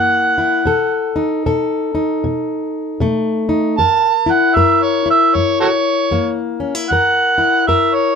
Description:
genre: acoustic country blues, solo or duo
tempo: 77 BPM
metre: 4/4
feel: swing 61% on 8ths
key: F# mixolydian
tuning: A4 = 442 Hz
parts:
  - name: overdriven harmonica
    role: melody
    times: 0.0-8.2 s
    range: F#4 to A5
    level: -14 LUFS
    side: right 3 dB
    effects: none
  - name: fingerpicked plugged-in steel-string acoustic guitar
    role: accompaniment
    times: 0.0-8.2 s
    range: F#2 to A#4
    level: -17 LUFS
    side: left 4 dB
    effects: none
room: light reverb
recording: minimal, uncompressed stereo recording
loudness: -13 LUFS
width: side -6 dB against mid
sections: 0.0-8.2 A section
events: none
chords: 0.0 F#7; 0.7 B7; 3.8 F#7

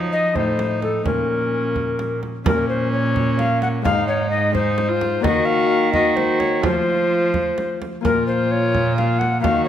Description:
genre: classical, renaissance-style consort dance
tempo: 86 BPM (dotted quarters)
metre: 6/8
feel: straight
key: Bb minor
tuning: A4 = 438 Hz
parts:
  - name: Celtic harp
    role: accompaniment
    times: 0.0-9.7 s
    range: Ab2 to C5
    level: -26 LUFS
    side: left 6 dB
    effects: none
  - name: warm viola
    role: accompaniment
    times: 0.0-9.7 s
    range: Db4 to Gb4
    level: -25 LUFS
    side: equal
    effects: none
  - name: rich cello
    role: bass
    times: 0.0-9.7 s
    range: Ab2 to F3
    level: -23 LUFS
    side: right 3 dB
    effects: none
  - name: mellow tenor recorder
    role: melody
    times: 0.1-9.7 s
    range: A4 to Gb5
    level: -21 LUFS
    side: left 2 dB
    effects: none
  - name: frame drum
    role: percussion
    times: 0.4-9.7 s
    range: none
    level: -26 LUFS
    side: right 4 dB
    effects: none
room: moderate recital hall reverb, RT60 1.6 s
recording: none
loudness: -17 LUFS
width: side -10 dB against mid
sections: 0.0-2.5 A section; 2.5-9.7 A section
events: none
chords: 0.0 F7; 1.1 Bbm; 3.9 Ab; 5.2 Ebm; 6.6 F; 8.0 Bbm

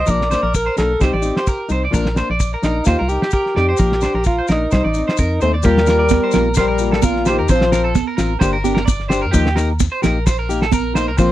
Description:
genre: highlife guitar band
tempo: 130 BPM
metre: 4/4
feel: swing 54% on 16ths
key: unclear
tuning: A4 = 439 Hz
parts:
  - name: breathy alto saxophone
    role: melody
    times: 0.0-7.9 s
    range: Eb4 to Eb5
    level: -19 LUFS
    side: equal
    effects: none
  - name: electric guitar at the edge of break-up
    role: arpeggios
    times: 0.0-11.3 s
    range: G4 to D5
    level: -23 LUFS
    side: right 3 dB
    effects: lush chorus, slapback echo
  - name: organ-like FM bass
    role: bass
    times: 0.0-11.3 s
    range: G1 to G2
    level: -20 LUFS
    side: equal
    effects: none
  - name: nylon-string guitar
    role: accompaniment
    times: 0.1-11.3 s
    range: F3 to G4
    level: -22 LUFS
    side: left 4 dB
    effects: none
  - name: cloth-damped thuddy drum kit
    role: drums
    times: 0.1-11.3 s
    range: kick drum, snare drum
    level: -18 LUFS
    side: equal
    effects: none
  - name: maracas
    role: percussion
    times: 0.1-11.3 s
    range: none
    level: -32 LUFS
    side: left 13 dB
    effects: none
  - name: warm trombone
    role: second line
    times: 5.4-8.0 s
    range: Bb2 to A3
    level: -22 LUFS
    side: left 11 dB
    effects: none
  - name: congas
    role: percussion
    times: 5.7-11.3 s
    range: none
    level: -22 LUFS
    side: right 16 dB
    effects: none
room: little or no reverb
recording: dry, close 1970s-style studio recording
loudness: -14 LUFS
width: side -14 dB against mid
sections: 0.0-5.6 A section; 5.6-11.3 B section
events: none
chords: 0.1 Bb; 1.0 Cm; 1.9 Bb; 2.9 Eb; 3.8 Bb; 4.7 Cm; 5.6 Ebadd9; 7.5 Bbsus2; 8.4 Gm; 9.3 Eb

